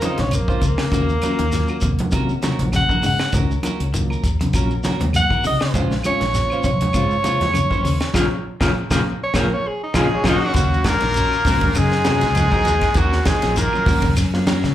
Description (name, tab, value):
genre	afrobeat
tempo	100 BPM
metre	4/4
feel	swing 55% on 16ths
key	Eb dorian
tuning	A4 = 440 Hz
part	bright alto saxophone	melody	0.0-10.6 s	Bb3 to Gb5	-22 LUFS	right 1 dB	slapback echo
part	reed electric piano	accompaniment	0.0-14.6 s	Db3 to F5	-30 LUFS	left 1 dB	none
part	clean electric guitar	stabs	0.0-14.7 s	Ab3 to C5	-27 LUFS	right 2 dB	lush chorus, slapback echo
part	fingered electric bass	bass	0.0-14.7 s	Bb1 to C3	-22 LUFS	equal	none
part	tight funk drum kit	drums	0.0-14.7 s	hi-hat, kick drum, ride cymbal, snare drum	-24 LUFS	equal	none
part	congas	percussion	0.0-14.6 s	none	-26 LUFS	right 1 dB	slapback echo
part	shekere	percussion	0.0-14.7 s	none	-29 LUFS	left 1 dB	none
part	electric guitar at the edge of break-up	arpeggios	0.2-14.7 s	Bb2 to F3	-25 LUFS	left 4 dB	slapback echo
part	claves	percussion	0.3-14.3 s	none	-36 LUFS	right 3 dB	none
part	clear trumpet	melody	10.0-14.1 s	Gb4 to Bb4	-20 LUFS	left 1 dB	slapback echo
part	bright tenor saxophone	second line	10.0-14.1 s	Gb3 to Bb3	-29 LUFS	right 3 dB	slapback echo
part	edgy baritone saxophone	second line	10.0-14.1 s	Gb2 to Bb2	-28 LUFS	left 3 dB	slapback echo
room	light reverb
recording	live gig heard through the venue's PA, club reverb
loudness	-16 LUFS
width	side -12 dB against mid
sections	0.0-10.6 A section; 10.6-14.7 B section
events	alto saxophone solo 0.0-10.6; band accent 8.2-10.6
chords	0.0 Bbm9; 0.9 Ebm7; 5.7 Bbm9; 10.6 Ebm7